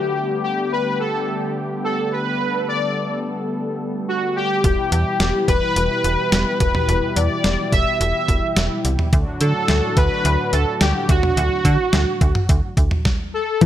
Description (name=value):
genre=synth-pop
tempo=107 BPM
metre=4/4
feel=straight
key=unclear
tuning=A4 = 438 Hz
part: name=analog synth brass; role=melody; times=0.0-13.7 s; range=F#4 to E5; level=-21 LUFS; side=left 1 dB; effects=chorus
part: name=brassy analog pad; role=sustained chords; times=0.0-13.7 s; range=A2 to B4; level=-25 LUFS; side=equal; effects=chorus
part: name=slap-like FM bass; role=bass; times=4.6-13.7 s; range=E1 to D3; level=-19 LUFS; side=equal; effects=none
part: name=detuned 8-bit digital drum machine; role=drums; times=4.6-13.7 s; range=hi-hat, kick drum, snare drum, toms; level=-20 LUFS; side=equal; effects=gated reverb
part: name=warbly dusty pluck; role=arpeggios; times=13.6-13.7 s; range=E3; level=-10 LUFS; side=left 4 dB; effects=chorus
room=light reverb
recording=none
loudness=-17 LUFS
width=side -11 dB against mid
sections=0.0-13.6 A section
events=stop 13.1-13.6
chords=0.2 Gadd9; 4.6 Em; 9.1 D